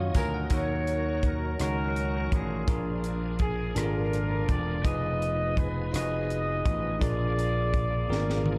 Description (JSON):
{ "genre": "slow gospel", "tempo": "55 BPM (dotted quarters)", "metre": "6/8", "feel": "straight", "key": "Eb harmonic minor", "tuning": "A4 = 440 Hz", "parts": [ { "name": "bell-like tine electric piano", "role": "accompaniment", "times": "0.0-8.6 s", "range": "Bb2 to Db6", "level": "-36 LUFS", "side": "equal", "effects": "analog delay" }, { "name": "bright tonewheel organ", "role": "sustained chords", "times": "0.0-8.6 s", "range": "Eb3 to Ab5", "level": "-43 LUFS", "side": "equal", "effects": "slow rotary speaker, chorus vibrato" }, { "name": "vintage slap bass", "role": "bass", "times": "0.0-8.6 s", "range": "Fb1 to Gb2", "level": "-33 LUFS", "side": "equal", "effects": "none" }, { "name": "crisp fusion drum kit", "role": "drums", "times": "0.1-8.6 s", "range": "hi-hat, kick drum, rim click, snare drum, toms", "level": "-33 LUFS", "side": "equal", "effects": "none" }, { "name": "clear horn section", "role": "melody", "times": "0.2-8.6 s", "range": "Db4 to Eb5", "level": "-34 LUFS", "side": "equal", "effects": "analog delay" }, { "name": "tambourine", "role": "percussion", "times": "0.2-0.5 s", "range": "none", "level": "-53 LUFS", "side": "equal", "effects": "analog delay" } ], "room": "small room ambience", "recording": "echo-heavy mix", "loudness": "-28 LUFS", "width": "mono", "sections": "0.5-8.6 A section", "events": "tine electric piano fill 0.0-0.5; drum fill 8.1-8.6", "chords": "0.0 Ebm9; 0.5 Ebm7; 2.7 Bb7; 4.8 Fm7b5; 7.0 Bb7", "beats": "| 0.51 1.59 | 2.67 3.76 | 4.84 5.92 | 7.00 8.09" }